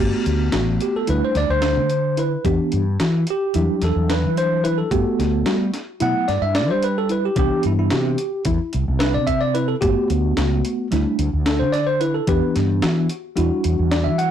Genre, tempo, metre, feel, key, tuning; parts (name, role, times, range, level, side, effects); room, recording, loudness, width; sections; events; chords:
progressive instrumental, band music in an uneven meter; 220 BPM (eighths); 9/8; straight; G major; A4 = 440 Hz
bell-like tine electric piano; accompaniment; 0.0-14.3 s; E3 to F#5; -21 LUFS; right 1 dB; medium stereo tremolo
soft round pluck; arpeggios; 0.0-14.2 s; D4 to G4; -27 LUFS; left 2 dB; chorus, ping-pong delay
fretless electric bass; bass; 0.0-14.3 s; G1 to G3; -21 LUFS; equal; transformer saturation, lush chorus
breakbeat sampler-style drum kit; drums; 0.3-14.3 s; hi-hat, kick drum, snare drum; -26 LUFS; equal
light reverb; blown-out, overdriven recording, overdrive; -17 LUFS; side -9 dB against mid
0.0-14.3 A section
tine electric piano solo 0.0-14.3
0.0 Gmaj7; 1.1 Dsus4; 2.5 Em9; 3.5 Em7; 4.9 Gmaj7; 7.4 Cmaj7; 9.8 Gmaj7; 10.9 Dsus4; 12.3 Em9; 13.4 Em7